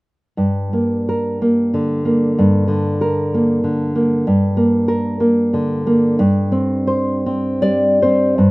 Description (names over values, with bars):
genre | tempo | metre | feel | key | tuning
romantic piece for solo classical guitar | 74-100 BPM | 3/4 | rubato | G minor | A4 = 441 Hz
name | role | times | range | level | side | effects
nylon-string guitar | solo | 0.4-8.5 s | G2 to D5 | -14 LUFS | equal | none
room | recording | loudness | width
light reverb | recorded outdoors, with no room sound | -14 LUFS | side -21 dB against mid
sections
0.4-8.4 A section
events
none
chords
0.4 Gm; 6.2 C5/G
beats
| 0.38 1.08 1.72 | 2.35 2.99 3.62 | 4.24 4.86 5.52 | 6.18 6.88 7.62 | 8.38